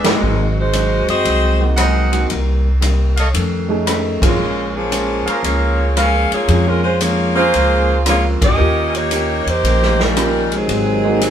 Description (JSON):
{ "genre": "jazz, big band swing", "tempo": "114 BPM", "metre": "4/4", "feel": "swing 67% on 8ths", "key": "Ab mixolydian", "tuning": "A4 = 440 Hz", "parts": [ { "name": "vintage hollow-body jazz guitar", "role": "accompaniment", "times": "0.0-11.3 s", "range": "F2 to G4", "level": "-25 LUFS", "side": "left 2 dB", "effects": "none" }, { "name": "warm upright piano", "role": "accompaniment", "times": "0.0-11.2 s", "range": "A3 to Bb4", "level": "-22 LUFS", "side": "right 4 dB", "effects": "none" }, { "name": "clear trumpet section", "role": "stabs", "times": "0.0-8.0 s", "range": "Db4 to Gb5", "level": "-21 LUFS", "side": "right 1 dB", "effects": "none" }, { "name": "upright bass", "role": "bass", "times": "0.0-11.3 s", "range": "Gb1 to F2", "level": "-18 LUFS", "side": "equal", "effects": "none" }, { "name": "swinging big-band drum kit", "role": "drums", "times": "0.0-11.3 s", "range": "hi-hat, kick drum, ride cymbal, rim click, snare drum", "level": "-22 LUFS", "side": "left 1 dB", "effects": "none" }, { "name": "bright saxophone section", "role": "melody", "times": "0.1-11.3 s", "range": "F3 to F5", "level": "-17 LUFS", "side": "right 1 dB", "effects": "none" }, { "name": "warm trombone section", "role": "second line", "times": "10.5-11.3 s", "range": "C3 to Ab3", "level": "-18 LUFS", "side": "right 1 dB", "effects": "none" } ], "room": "moderate studio reverb, RT60 0.5 s", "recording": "band playing live in one room", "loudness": "-13 LUFS", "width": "side -9 dB against mid", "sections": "0.0-11.3 A section", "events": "band accent 0.0, 4.1, 8.3", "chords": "0.2 Ab7; 2.3 Cm7; 3.3 F7alt; 4.4 Bbm7; 8.6 Eb7; 10.7 Ab7", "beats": "| 0.22 0.74 1.26 1.78 | 2.30 2.83 3.35 3.87 | 4.39 4.92 5.44 5.96 | 6.49 7.01 7.54 8.06 | 8.59 9.12 9.64 10.16 | 10.69 11.21" }